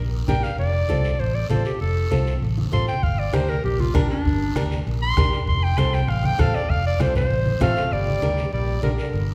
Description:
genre	latin, cumbia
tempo	196 BPM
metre	4/4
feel	straight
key	G minor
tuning	A4 = 441 Hz
part	bright clarinet	melody	0.0-9.3 s	D4 to C6	-28 LUFS	equal	none
part	fingered electric bass	bass	0.0-9.3 s	F1 to D2	-26 LUFS	equal	none
part	flamenco guitar	accompaniment	0.3-9.0 s	C4 to Bb4	-31 LUFS	equal	none
part	congas	percussion	0.3-9.0 s	none	-30 LUFS	equal	none
part	guiro	percussion	0.3-9.3 s	none	-43 LUFS	equal	none
part	bombo	percussion	3.0-7.8 s	none	-28 LUFS	equal	none
part	bright trombone	second line	7.6-9.3 s	D3 to A3	-34 LUFS	equal	none
room	wet recital hall reverb, RT60 1.5 s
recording	recorded in a church or concert hall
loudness	-22 LUFS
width	mono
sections	0.0-7.9 A section; 7.9-9.3 B section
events	clarinet solo 0.0-7.9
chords	0.0 Gm; 0.6 F; 3.0 Gm; 5.5 F; 7.9 Gm

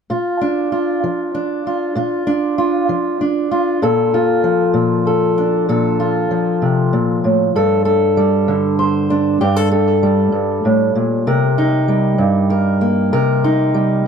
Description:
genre	folk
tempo	64 BPM (dotted quarters)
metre	6/8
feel	straight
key	Bb major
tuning	A4 = 441 Hz
part	fingerpicked steel-string acoustic guitar	accompaniment	0.1-14.1 s	G2 to C5	-14 LUFS	equal	analog delay
room	light reverb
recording	echo-heavy mix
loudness	-14 LUFS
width	side -6 dB against mid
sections	0.1-3.8 A section; 3.8-14.1 B section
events	none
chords	0.1 Bb; 3.8 Bbmaj7; 7.5 Gsus2; 11.3 Cm7

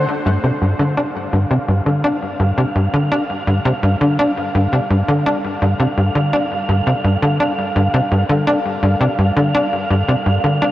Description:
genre	ambient, sequencer-driven space music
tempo	84 BPM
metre	4/4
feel	straight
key	G minor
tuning	A4 = 442 Hz
part	sweeping resonant pad	sustained chords	0.0-10.7 s	G3 to G5	-28 LUFS	left 1 dB	chorus
part	tight sequencer bass	riff	0.0-10.7 s	G2 to D4	-15 LUFS	equal	lush chorus, cassette tape, ping-pong delay
part	soft round pluck	arpeggios	0.1-10.7 s	G3 to G4	-33 LUFS	equal	none
part	wind-like tuned noise texture	texture	0.7-10.7 s	F5	-24 LUFS	right 2 dB	built-in reverb
room	wet huge ambient reverb, RT60 8.7 s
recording	worn, warbling old tape, cassette tape, warbly pitch drift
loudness	-14 LUFS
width	side -14 dB against mid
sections	0.1-10.7 A section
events	fade-in on analog synth pad 0.1-10.7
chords	0.1 Gmadd9

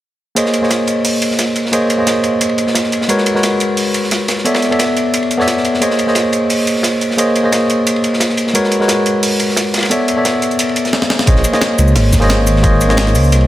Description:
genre	liquid drum and bass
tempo	176 BPM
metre	4/4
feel	swing 53% on 16ths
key	unclear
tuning	A4 = 439 Hz
part	tine electric piano	accompaniment	0.4-13.5 s	Ab3 to E5	-14 LUFS	equal	low-pass filter, tape echo
part	breakbeat sampler-style drum kit	drums	0.4-13.4 s	cabasa, hi-hat, snare drum	-19 LUFS	right 1 dB	none
part	crunchy breakbeat drum kit	drums	0.4-13.5 s	hi-hat, ride cymbal, snare drum	-20 LUFS	equal	high-pass filter on cymbals, high-pass filter on hats, high-pass filter on snare, high-pass filter on room
part	dark detuned saw bass	bass	11.3-13.5 s	Ab1 to Db2	-12 LUFS	equal	none
part	electronic kick drum	drums	11.3-12.7 s	none	-13 LUFS	equal	none
room	moderate lush hall reverb, RT60 2.2 s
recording	none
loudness	-12 LUFS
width	side -14 dB against mid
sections	0.4-11.3 A section; 11.3-13.5 B section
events	filter sweep on tine electric piano 0.4-11.3; drum fill 10.9-11.3; drop 11.3-13.5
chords	0.4 Bbm11; 3.1 Abm11; 4.5 Bm11; 5.8 Bbm11; 8.5 Abm11; 9.9 Bm11; 11.3 Bbm11

